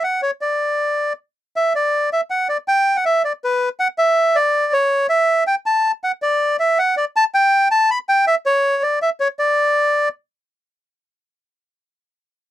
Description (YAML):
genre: tango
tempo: 161 BPM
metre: 3/4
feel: rubato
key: D major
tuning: A4 = 440 Hz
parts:
  - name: bandoneon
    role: solo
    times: 0.0-10.1 s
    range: B4 to B5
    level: -15 LUFS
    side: equal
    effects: none
room: little or no reverb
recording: dry, close 1970s-style studio recording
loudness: -15 LUFS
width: side -13 dB against mid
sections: 0.0-1.6 A section; 1.6-10.5 A section; 10.5-11.6 B section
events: none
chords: none